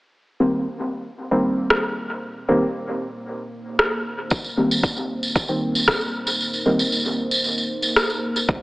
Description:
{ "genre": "dub techno", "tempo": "115 BPM", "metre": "4/4", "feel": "straight", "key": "C minor", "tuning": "A4 = 440 Hz", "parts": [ { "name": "deep dark ambient pad", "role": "sustained chords", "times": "2.5-8.6 s", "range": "Bb3 to C5", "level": "-29 LUFS", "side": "equal", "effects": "chorus, built-in reverb, sidechain pumping" }, { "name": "deep mellow chord stab", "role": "stabs", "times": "0.4-6.8 s", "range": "Eb3 to C4", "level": "-23 LUFS", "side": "equal", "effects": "chorus, phaser, cassette tape, sidechain pumping, dub echo" }, { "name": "electronic rim click", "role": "drums", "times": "1.7-8.1 s", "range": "none", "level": "-21 LUFS", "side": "equal", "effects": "overdrive, dub echo" }, { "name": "electronic kick drum", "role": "drums", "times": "4.3-8.6 s", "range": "none", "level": "-22 LUFS", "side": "equal", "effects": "overdrive" }, { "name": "tambourine", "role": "percussion", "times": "4.3-8.5 s", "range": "none", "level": "-24 LUFS", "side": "right 1 dB", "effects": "none" }, { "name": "pure sine sub bass", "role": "bass", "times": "8.5-8.6 s", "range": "C2", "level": "-39 LUFS", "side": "equal", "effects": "sidechain pumping" } ], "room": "moderate lush hall reverb, RT60 2.1 s", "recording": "AM radio sound", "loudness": "-19 LUFS", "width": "side -20 dB against mid", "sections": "0.1-8.5 A section", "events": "filter sweep on ambient pad 0.1-8.5; kick drops out 6.4-8.5", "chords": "0.1 Cm7", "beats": "| 0.14 0.66 1.18 1.70 | 2.23 2.75 3.27 3.79 | 4.31 4.83 5.36 5.88 | 6.40 6.92 7.44 7.96 | 8.49" }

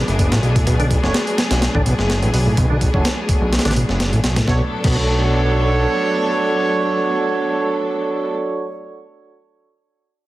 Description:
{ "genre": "breakbeat, breaks", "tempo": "126 BPM", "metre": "4/4", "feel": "swing 54% on 16ths", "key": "B dorian", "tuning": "A4 = 440 Hz", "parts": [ { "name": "rich studio string section", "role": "sustained chords", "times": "0.0-8.3 s", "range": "F#3 to A4", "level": "-24 LUFS", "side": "left 1 dB", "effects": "sidechain pumping" }, { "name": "bright tonewheel organ", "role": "riff", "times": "0.0-5.0 s", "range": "A2 to D3", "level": "-22 LUFS", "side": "equal", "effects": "chorus vibrato, slow rotary speaker, low-pass filter, digital delay" }, { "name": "fat analog bass", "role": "bass", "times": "0.1-5.9 s", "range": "F#1 to B1", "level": "-19 LUFS", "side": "equal", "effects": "tube saturation" }, { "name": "breakbeat sampler-style drum kit", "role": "drums", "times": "0.1-5.0 s", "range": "crash cymbal, hi-hat, kick drum, snare drum", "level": "-20 LUFS", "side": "equal", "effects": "studio reverb" }, { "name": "clear brass ensemble", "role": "stabs", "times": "1.0-8.7 s", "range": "D4 to C#5", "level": "-20 LUFS", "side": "right 3 dB", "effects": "low-pass filter, digital delay" } ], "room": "light reverb, digital ambience", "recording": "heavily compressed radio sound, multiband compression", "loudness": "-15 LUFS", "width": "side -16 dB against mid", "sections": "0.0-4.5 A section; 4.5-8.3 B section", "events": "filter sweep on tonewheel organ 0.0-4.5", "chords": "0.0 Bm7", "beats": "0.19 | 0.67 1.14 1.62 2.09 | 2.57 3.05 3.52 4.00 | 4.47 4.95 5.43 5.90 | 6.38 6.86 7.33 7.81" }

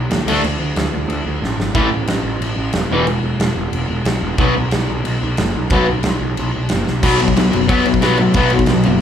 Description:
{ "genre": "punk rock", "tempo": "182 BPM", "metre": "4/4", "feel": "straight", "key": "unclear", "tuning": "A4 = 440 Hz", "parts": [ { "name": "fuzz picked electric bass", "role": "bass", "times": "0.0-9.0 s", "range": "E1 to A2", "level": "-20 LUFS", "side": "equal", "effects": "overdrive" }, { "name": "big rock drum kit", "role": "drums", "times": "0.1-8.9 s", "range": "crash cymbal, kick drum, snare drum", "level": "-19 LUFS", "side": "right 1 dB", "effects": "none" }, { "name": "distorted electric guitar", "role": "riff", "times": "0.3-9.0 s", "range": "E2 to D4", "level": "-15 LUFS", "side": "left 2 dB", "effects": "distortion" } ], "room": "light reverb", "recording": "band playing live in one room", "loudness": "-14 LUFS", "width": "side -9 dB against mid", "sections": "0.0-7.0 A section; 7.0-9.0 B section", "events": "drum fill 1.4-1.8, 6.9", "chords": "0.3 D5; 1.8 A5; 2.9 E5; 4.4 B5", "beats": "0.10 | 0.43 0.76 1.09 1.42 | 1.75 2.08 2.42 2.75 | 3.08 3.41 3.74 4.07 | 4.40 4.73 5.06 5.39 | 5.72 6.05 6.38 6.71 | 7.04 7.37 7.70 8.03 | 8.36 8.69" }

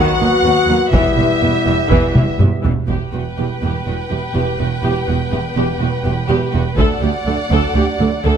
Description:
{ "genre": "cinematic, epic orchestral film score", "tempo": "123 BPM", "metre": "4/4", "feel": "straight", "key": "E minor", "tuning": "A4 = 438 Hz", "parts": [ { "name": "rich symphonic violin section", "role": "melody", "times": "0.0-8.4 s", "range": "E5 to G5", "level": "-25 LUFS", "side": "left 3 dB", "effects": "none" }, { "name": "rich symphonic violin section", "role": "second line", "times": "0.0-8.4 s", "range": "B4 to F#5", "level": "-24 LUFS", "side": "left 2 dB", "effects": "none" }, { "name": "rich symphonic viola section", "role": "accompaniment", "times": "0.0-8.4 s", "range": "D#3 to A4", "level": "-22 LUFS", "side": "right 1 dB", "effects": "none" }, { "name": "mellow French horn section", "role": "sustained chords", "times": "0.0-8.4 s", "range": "F#3 to F#4", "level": "-24 LUFS", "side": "left 5 dB", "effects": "none" }, { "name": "warm trombone section", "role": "sustained chords", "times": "0.0-2.6 s", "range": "F#3 to B3", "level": "-25 LUFS", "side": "right 2 dB", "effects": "none" }, { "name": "warm woodwind section", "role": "sustained chords", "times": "0.0-2.6 s", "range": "B3 to F#5", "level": "-25 LUFS", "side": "equal", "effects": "none" }, { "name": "clear symphonic double bass section", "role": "bass", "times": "0.0-8.3 s", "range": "E1 to D#2", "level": "-20 LUFS", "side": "right 4 dB", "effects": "none" }, { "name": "rich symphonic cello section", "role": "bass", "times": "0.0-8.3 s", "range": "D2 to E2", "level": "-21 LUFS", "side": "right 3 dB", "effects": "none" }, { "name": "taiko ensemble", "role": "drums", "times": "0.9-3.8, 6.8-7.7 s", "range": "none", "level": "-17 LUFS", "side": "equal", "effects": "none" } ], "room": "moderate recital hall reverb, RT60 1.5 s", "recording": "close, detailed microphones", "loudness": "-14 LUFS", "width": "side -8 dB against mid", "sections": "0.0-2.9 A section; 2.9-8.4 B section", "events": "drum fill 2.2-2.9", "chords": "0.0 B/D#; 0.9 Em; 6.8 D", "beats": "0.45 | 0.94 1.43 1.91 2.40 | 2.89 3.38 3.86 4.35 | 4.84 5.33 5.82 6.30 | 6.79 7.28 7.77 8.25" }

